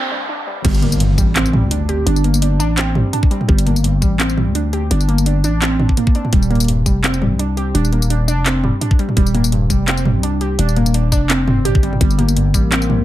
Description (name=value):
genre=half-time drum and bass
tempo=169 BPM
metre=4/4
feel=swing 55% on 16ths, half-time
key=G minor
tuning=A4 = 440 Hz
part: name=warbly dusty pluck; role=arpeggios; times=0.0-13.0 s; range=G2 to G4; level=-20 LUFS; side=right 2 dB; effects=chorus, phaser, tape echo
part: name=noise sweep and impact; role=sound effects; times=0.0-2.1 s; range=none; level=-24 LUFS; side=left 1 dB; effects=none
part: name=growling 808-style bass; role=bass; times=0.6-13.0 s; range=Eb1 to D2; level=-16 LUFS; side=equal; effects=none
part: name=drum and bass drum kit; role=drums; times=0.6-13.0 s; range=crash cymbal, handclaps, hi-hat, tambourine, toms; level=-20 LUFS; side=equal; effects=high-pass filter on hats, high-pass filter on snare, high-pass filter on toms, high-pass filter on perc, high-pass filter on cymbals
part: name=electronic kick drum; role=drums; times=0.6-12.6 s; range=none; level=-15 LUFS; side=equal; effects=none
part: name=metallic inharmonic drone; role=texture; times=12.3-13.0 s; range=Bb3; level=-24 LUFS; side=left 5 dB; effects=chorus, built-in reverb
room=light reverb, digital ambience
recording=high-pass filter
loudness=-13 LUFS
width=side -14 dB against mid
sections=0.6-13.0 A section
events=break 0.0-0.6; noise sweep 0.0-0.6; drop 0.6-13.0; impact 0.6-2.1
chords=0.0 Gsus4; 0.6 Gm; 6.3 Eb; 12.0 Gm